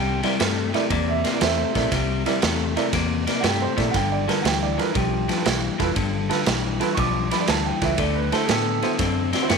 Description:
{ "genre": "electric blues shuffle", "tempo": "119 BPM", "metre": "4/4", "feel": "swing 67% on 8ths", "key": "G mixolydian", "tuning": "A4 = 440 Hz", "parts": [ { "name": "warm concert grand piano", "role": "accompaniment", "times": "0.0-9.5 s", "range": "E4 to D6", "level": "-26 LUFS", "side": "right 11 dB", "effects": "none" }, { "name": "electric guitar at the edge of break-up", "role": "riff", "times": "0.0-9.6 s", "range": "G2 to C4", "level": "-24 LUFS", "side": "left 14 dB", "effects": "none" }, { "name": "vintage muted fingered electric bass", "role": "bass", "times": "0.0-9.6 s", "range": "F1 to Bb2", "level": "-27 LUFS", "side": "equal", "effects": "none" }, { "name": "raw garage drum kit", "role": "drums", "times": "0.2-9.6 s", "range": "kick drum, ride cymbal, snare drum", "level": "-25 LUFS", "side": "right 5 dB", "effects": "none" } ], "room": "light reverb, studio ambience", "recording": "1960s-style stereo with parts hard left and right", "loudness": "-20 LUFS", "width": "side -5 dB against mid", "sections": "0.0-9.6 A section", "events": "none", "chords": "0.0 C7; 3.9 G7; 8.0 D7", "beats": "0.40 0.90 1.41 | 1.92 2.42 2.93 3.44 | 3.94 4.45 4.95 5.46 | 5.96 6.47 6.97 7.48 | 7.98 8.49 8.99 9.50" }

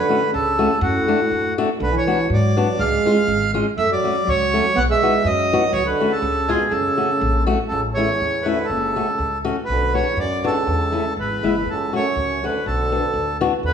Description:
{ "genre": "alpine folk, alpine dance band", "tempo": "122 BPM", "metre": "2/4", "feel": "straight", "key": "F# minor", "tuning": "A4 = 441 Hz", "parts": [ { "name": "accordion", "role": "melody", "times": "0.0-13.7 s", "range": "F#4 to F#5", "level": "-21 LUFS", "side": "right 2 dB", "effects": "none" }, { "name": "mellow euphonium", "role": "second line", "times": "0.0-13.7 s", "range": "C#2 to B3", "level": "-24 LUFS", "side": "right 3 dB", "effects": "none" }, { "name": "fingerpicked old ladder-braced acoustic guitar", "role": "accompaniment", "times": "0.1-13.5 s", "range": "G#3 to F#4", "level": "-23 LUFS", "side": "left 4 dB", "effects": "none" }, { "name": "upright bass", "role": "bass", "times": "0.3-13.7 s", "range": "F#1 to G#2", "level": "-25 LUFS", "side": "left 1 dB", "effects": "none" } ], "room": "moderate recital hall reverb, RT60 1.6 s", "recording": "recorded in a church or concert hall, studio reverb", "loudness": "-17 LUFS", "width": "side -7 dB against mid", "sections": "0.0-7.7 A section; 7.7-13.7 B section", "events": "none", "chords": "0.0 F#m; 0.8 D/F#; 1.8 Bm; 2.8 C#; 3.8 F#m; 4.8 B; 5.7 F#m/C#; 6.2 C#; 6.7 F#m; 7.7 A; 8.7 F#m; 9.7 Bm; 10.7 A; 11.2 E; 11.7 F#m; 12.7 Bm", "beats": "0.33 | 0.83 1.32 | 1.81 2.30 | 2.79 3.29 | 3.78 4.28 | 4.77 5.26 | 5.75 6.24 | 6.73 7.22 | 7.72 8.21 | 8.70 9.20 | 9.69 10.18 | 10.67 11.17 | 11.66 12.16 | 12.65 13.15 | 13.64" }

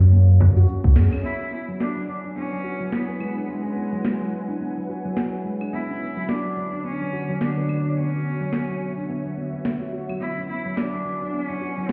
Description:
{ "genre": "organic downtempo", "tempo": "107 BPM", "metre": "4/4", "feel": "swing 58% on 16ths", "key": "unclear", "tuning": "A4 = 442 Hz", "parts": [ { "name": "handpan", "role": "arpeggios", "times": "0.0-11.9 s", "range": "F#3 to B4", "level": "-31 LUFS", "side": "equal", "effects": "low-pass filter, digital delay" }, { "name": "warm sub bass", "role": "bass", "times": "0.0-1.1 s", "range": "C#2 to F#2", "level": "-16 LUFS", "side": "equal", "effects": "none" }, { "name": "electronic shaker, snare drum and claves", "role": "drums", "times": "0.0-11.9 s", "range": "none", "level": "-30 LUFS", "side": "equal", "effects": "low-pass filter on perc, low-pass filter on snare" }, { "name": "frame drum", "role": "percussion", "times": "0.4-0.5 s", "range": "none", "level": "-30 LUFS", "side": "equal", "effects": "none" }, { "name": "electronic kick drum", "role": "drums", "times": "0.8-0.9 s", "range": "none", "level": "-20 LUFS", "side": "equal", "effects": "overdrive" }, { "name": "bright cello", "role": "melody", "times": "1.2-11.9 s", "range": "G#3 to E4", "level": "-32 LUFS", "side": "equal", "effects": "digital delay" }, { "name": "ethereal airy pad", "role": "sustained chords", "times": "2.1-11.9 s", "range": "D3 to G#5", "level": "-34 LUFS", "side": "equal", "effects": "ensemble chorus, built-in reverb, sidechain pumping" } ], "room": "light reverb, small room ambience", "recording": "heard muffled through a wall, stone room reverb, EQ", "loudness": "-24 LUFS", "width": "mono", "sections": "0.0-1.2 A section; 1.2-11.9 B section", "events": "band accent 1.0", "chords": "0.0 F#; 1.2 Eadd9; 5.7 Bmadd9/D; 10.2 E13", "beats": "0.12 0.68 | 1.24 1.80 2.36 2.92 | 3.48 4.04 4.60 5.17 | 5.73 6.29 6.85 7.41 | 7.97 8.53 9.09 9.65 | 10.21 10.77 11.33 11.89" }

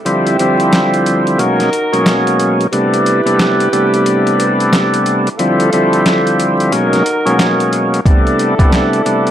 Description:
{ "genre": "hip hop, boom-bap hip-hop", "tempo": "90 BPM", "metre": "4/4", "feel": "swing 62% on 16ths", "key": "A minor", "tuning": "A4 = 440 Hz", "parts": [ { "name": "overdriven tonewheel organ", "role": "accompaniment", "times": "0.1-9.3 s", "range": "B2 to E4", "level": "-12 LUFS", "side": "equal", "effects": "slow rotary speaker, cassette tape, high-pass filter, low-pass filter, plate reverb" }, { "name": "mellow horn section", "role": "stabs", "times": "0.1-9.3 s", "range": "A3 to B4", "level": "-18 LUFS", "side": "right 1 dB", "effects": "high-pass filter, low-pass filter, tape echo, plate reverb" }, { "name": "boom bap sampler-style drum kit", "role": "drums", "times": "0.1-9.3 s", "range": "handclaps, hi-hat, kick drum, snare drum", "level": "-16 LUFS", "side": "equal", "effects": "none" } ], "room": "moderate studio reverb, RT60 0.6 s", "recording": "vinyl crackle", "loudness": "-10 LUFS", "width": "side -10 dB against mid", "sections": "0.0-9.3 A section", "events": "break 0.0-8.1", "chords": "0.1 Dm11; 1.4 G#m11; 2.7 Am11; 5.4 Dm11; 6.7 G#m11; 8.1 Am11", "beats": "| 0.05 0.72 1.39 2.05 | 2.72 3.39 4.05 4.72 | 5.39 6.05 6.72 7.39 | 8.05 8.72" }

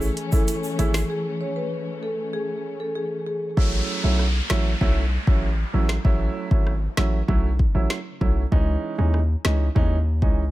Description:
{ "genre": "dancehall", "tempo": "97 BPM", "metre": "4/4", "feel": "straight", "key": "unclear", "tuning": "A4 = 441 Hz", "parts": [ { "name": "warm baby grand piano", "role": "accompaniment", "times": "0.0-10.4 s", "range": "E3 to E4", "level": "-28 LUFS", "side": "right 5 dB", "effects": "none" }, { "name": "dark studio string section", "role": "sustained chords", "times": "0.0-3.5 s", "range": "E3 to C#4", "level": "-31 LUFS", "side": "left 3 dB", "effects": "none" }, { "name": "hard-hitting 808-style bass", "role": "bass", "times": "0.0-10.5 s", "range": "G#1 to D#2", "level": "-22 LUFS", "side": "equal", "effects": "none" }, { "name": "tube shaker", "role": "percussion", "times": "0.0-1.1 s", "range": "none", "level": "-38 LUFS", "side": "right 4 dB", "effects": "none" }, { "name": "afro-pop drum kit", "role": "drums", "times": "0.2-10.4 s", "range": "finger snaps, hi-hat, kick drum, rim click, snare drum", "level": "-22 LUFS", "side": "equal", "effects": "overdrive" }, { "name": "marimba with medium mallets", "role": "melody", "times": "0.3-3.4 s", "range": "G#4 to C#5", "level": "-29 LUFS", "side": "equal", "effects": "none" }, { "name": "downlifter", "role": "sound effects", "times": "3.6-8.5 s", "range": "none", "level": "-32 LUFS", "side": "equal", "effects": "none" } ], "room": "little or no reverb", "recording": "none", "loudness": "-20 LUFS", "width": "side -16 dB against mid", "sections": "0.0-3.6 A section; 3.6-10.5 B section", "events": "break 1.1-3.6; hi-hats muted 3.6-10.5", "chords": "0.0 A; 3.6 A6; 8.5 C#madd9", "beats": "0.48 | 1.10 1.72 2.33 2.95 | 3.57 4.19 4.81 5.43 | 6.05 6.67 7.28 7.90 | 8.52 9.14 9.76 10.38" }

